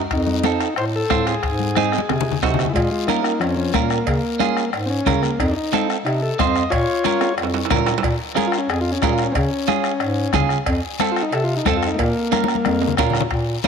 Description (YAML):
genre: latin, cumbia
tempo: 182 BPM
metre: 4/4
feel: straight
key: Bb minor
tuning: A4 = 440 Hz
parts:
  - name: mellow bass clarinet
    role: bass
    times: 0.0-13.7 s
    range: F2 to Db3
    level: -23 LUFS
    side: equal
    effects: none
  - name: combo organ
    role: melody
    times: 0.1-12.9 s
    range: F3 to Eb5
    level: -23 LUFS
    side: left 2 dB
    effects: none
  - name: bombo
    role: percussion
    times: 0.1-13.7 s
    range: none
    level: -26 LUFS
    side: left 4 dB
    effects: none
  - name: congas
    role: percussion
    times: 0.1-13.7 s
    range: none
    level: -26 LUFS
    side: left 13 dB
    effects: none
  - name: guiro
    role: percussion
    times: 0.1-13.7 s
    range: none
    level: -34 LUFS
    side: left 13 dB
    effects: none
  - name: timbales and cowbell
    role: percussion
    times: 0.1-13.7 s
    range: none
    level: -30 LUFS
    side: right 12 dB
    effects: none
  - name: clean electric guitar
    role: accompaniment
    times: 0.4-13.7 s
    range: C4 to C5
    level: -23 LUFS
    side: right 12 dB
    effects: none
room: light reverb, studio reverb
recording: 1960s-style stereo with parts hard left and right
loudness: -17 LUFS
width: side -6 dB against mid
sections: 0.0-2.8 A section; 2.8-13.3 B section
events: drum fill 1.8-2.8, 7.2-8.0, 12.3-13.3; transistor combo organ solo 2.8-13.3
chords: 0.1 F7; 1.4 Ab; 2.8 Bbm; 4.1 Db; 5.4 F7; 6.7 Bbm; 9.4 Db; 10.7 F; 12.0 Bbm